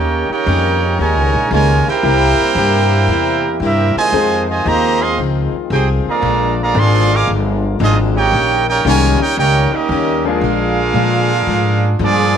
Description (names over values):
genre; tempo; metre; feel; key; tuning
jazz, big band swing; 114 BPM; 4/4; swing 68% on 8ths; Eb major; A4 = 445 Hz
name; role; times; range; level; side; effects
brilliant trumpet section; melody; 0.0-12.4 s; Bb3 to D6; -16 LUFS; right 3 dB; none
clear trombone section; second line; 0.0-12.4 s; Bb2 to Ab4; -21 LUFS; right 9 dB; none
picked plugged-in steel-string acoustic guitar; accompaniment; 0.0-12.4 s; Bb2 to Ab4; -22 LUFS; left 12 dB; none
warm trombone section; sustained chords; 0.0-12.4 s; C3 to Ab4; -26 LUFS; left 10 dB; none
upright bass; bass; 0.0-12.4 s; G1 to Bb2; -17 LUFS; equal; none
clear grand piano; accompaniment; 0.5-10.4 s; Eb3 to Bb4; -21 LUFS; left 10 dB; none
room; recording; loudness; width
light reverb, studio reverb; 1960s-style stereo with parts hard left and right; -12 LUFS; side -8 dB against mid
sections
0.0-12.4 A section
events
none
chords
0.0 Eb7; 2.0 C7; 4.1 Fm7; 6.2 Bb7; 8.3 Eb7; 10.4 Bb7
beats
0.46 0.99 1.51 | 2.04 2.56 3.08 3.61 | 4.13 4.66 5.18 5.70 | 6.23 6.75 7.28 7.80 | 8.32 8.85 9.37 9.90 | 10.42 10.95 11.47 12.00